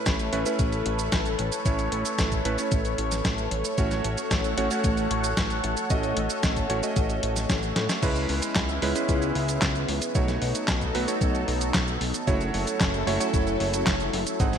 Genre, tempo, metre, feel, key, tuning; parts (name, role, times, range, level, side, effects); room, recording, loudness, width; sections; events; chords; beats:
italo disco; 113 BPM; 4/4; straight; A4 = 440 Hz
lush unison pad; sustained chords; 0.0-14.6 s; F#3 to F#5; -30 LUFS; left 1 dB; chorus, phaser
clear electric grand piano; stabs; 0.0-14.6 s; G#3 to F#5; -30 LUFS; right 3 dB; ping-pong delay
fat analog bass; bass; 0.1-14.6 s; F#1 to A2; -30 LUFS; left 1 dB
clean 12-bit digital drum machine; drums; 0.1-14.6 s; cabasa, crash cymbal, handclaps, hi-hat, snare drum; -29 LUFS; equal
electronic kick drum; drums; 0.1-14.5 s; -27 LUFS; left 1 dB
moderate lush hall reverb, RT60 1.7 s, digital ambience; bright 1980s-style digital production; -23 LUFS; side -8 dB against mid
0.0-8.0 A section; 8.0-14.6 B section
drum fill 7.8
0.0 Aadd9; 3.8 F#m/A; 8.0 C#m7; 10.2 B7; 12.3 F#m7
0.06 0.59 1.12 | 1.66 2.19 2.72 3.25 | 3.78 4.31 4.84 5.37 | 5.90 6.43 6.96 7.50 | 8.03 8.56 9.09 9.62 | 10.15 10.68 11.21 11.74 | 12.28 12.81 13.34 13.87 | 14.40